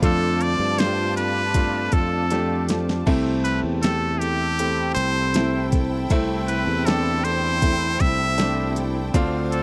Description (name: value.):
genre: pop ballad.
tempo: 79 BPM.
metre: 4/4.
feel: straight.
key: C major.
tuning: A4 = 440 Hz.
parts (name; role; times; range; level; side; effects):
clear studio violin section; second line; 0.0-9.6 s; C4 to A5; -35 LUFS; equal; none.
clear baby grand piano; accompaniment; 0.0-9.6 s; C3 to G4; -29 LUFS; equal; none.
airy breathy pad; sustained chords; 0.0-9.6 s; C4 to E6; -36 LUFS; equal; chorus.
picked steel-string acoustic guitar; arpeggios; 0.0-9.6 s; D3 to C5; -36 LUFS; equal; none.
sustaining fretless electric bass; bass; 0.0-9.6 s; C2 to G2; -28 LUFS; equal; none.
smooth R&B drum kit; drums; 0.0-9.6 s; crash cymbal, hi-hat, kick drum, snare drum; -25 LUFS; equal; none.
trumpet with straight mute; melody; 0.1-9.6 s; G4 to E5; -26 LUFS; equal; none.
room: little or no reverb.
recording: dry, close 1970s-style studio recording.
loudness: -22 LUFS.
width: mono.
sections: 0.0-9.6 A section.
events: drum fill 2.3-3.1.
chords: 0.0 F6; 3.1 C6.